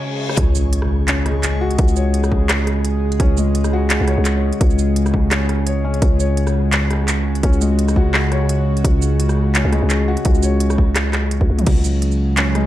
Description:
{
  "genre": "half-time drum and bass",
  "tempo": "170 BPM",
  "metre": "4/4",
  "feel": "swing 54% on 16ths, half-time",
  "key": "unclear",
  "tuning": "A4 = 441 Hz",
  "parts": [
    { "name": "bowed-like drone", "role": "sustained chords", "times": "0.0-12.7 s", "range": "C#3 to G#4", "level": "-24 LUFS", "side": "right 1 dB", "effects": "built-in reverb, sidechain pumping" },
    { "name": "felt-muted upright piano", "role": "arpeggios", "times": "0.0-12.7 s", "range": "G#3 to C#5", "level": "-25 LUFS", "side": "left 3 dB", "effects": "digital delay" },
    { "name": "reverse cymbal and impact", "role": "sound effects", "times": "0.0-1.8 s", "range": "none", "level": "-28 LUFS", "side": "equal", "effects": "none" },
    { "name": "organic electronic drum kit", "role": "drums", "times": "0.3-12.6 s", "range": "crash cymbal, handclaps, hi-hat, rim click, shaker, toms", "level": "-22 LUFS", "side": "equal", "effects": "none" },
    { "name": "growling 808-style bass", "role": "bass", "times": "0.4-12.7 s", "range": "C#2", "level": "-17 LUFS", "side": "equal", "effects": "tube saturation" },
    { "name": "electronic kick drum", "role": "drums", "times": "0.4-11.7 s", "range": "none", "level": "-16 LUFS", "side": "equal", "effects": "none" }
  ],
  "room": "little or no reverb",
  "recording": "dark, warm production",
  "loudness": "-14 LUFS",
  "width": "side -14 dB against mid",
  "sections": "0.4-12.7 A section",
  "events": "reverse cymbal 0.0-0.4; drop 0.4-12.7; impact 0.4-1.8; drum fill 11.5",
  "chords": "0.4 C#5"
}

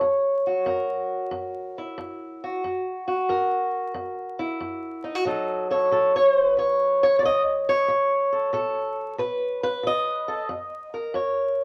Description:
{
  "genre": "acoustic country blues, solo or duo",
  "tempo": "92 BPM",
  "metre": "4/4",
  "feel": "swing 68% on 8ths",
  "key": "F# mixolydian",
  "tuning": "A4 = 440 Hz",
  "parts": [
    { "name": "fingerpicked swing-style acoustic guitar", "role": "solo", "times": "0.0-11.6 s", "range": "F#2 to D#5", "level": "-24 LUFS", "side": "equal", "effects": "none" }
  ],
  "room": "moderate studio reverb, RT60 0.6 s",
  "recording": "vinyl crackle",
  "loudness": "-24 LUFS",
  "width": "mono",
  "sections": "0.0-11.6 A section",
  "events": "none",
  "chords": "0.0 F#7; 5.3 B7; 10.5 F#"
}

